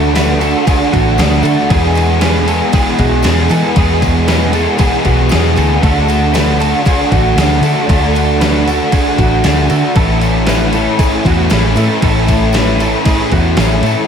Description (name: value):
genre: rock, shoegaze and dream pop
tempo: 116 BPM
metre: 4/4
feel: straight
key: D lydian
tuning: A4 = 441 Hz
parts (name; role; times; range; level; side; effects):
- direct-recorded clean electric guitar; arpeggios; 0.0-14.1 s; F#4 to B4; -22 LUFS; right 7 dB; ensemble chorus, slapback echo
- overdriven electric guitar; riff; 0.0-14.1 s; E2 to G#4; -16 LUFS; left 11 dB; wide subtle chorus
- overdriven electric guitar; riff; 0.0-14.1 s; E2 to G#4; -16 LUFS; right 12 dB; reverse reverb
- vintage muted fingered electric bass; bass; 0.0-13.9 s; A1 to E3; -14 LUFS; equal; none
- gated 80s digital drum machine; drums; 0.2-14.0 s; crash cymbal, kick drum, snare drum; -16 LUFS; equal; gated reverb, gated reverb snare, overdrive
- tambourine; percussion; 0.2-14.0 s; none; -34 LUFS; left 11 dB; none
room: light reverb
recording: none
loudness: -10 LUFS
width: side -7 dB against mid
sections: 0.0-14.1 A section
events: none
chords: 0.0 D; 1.7 E; 5.8 D; 10.0 Amaj7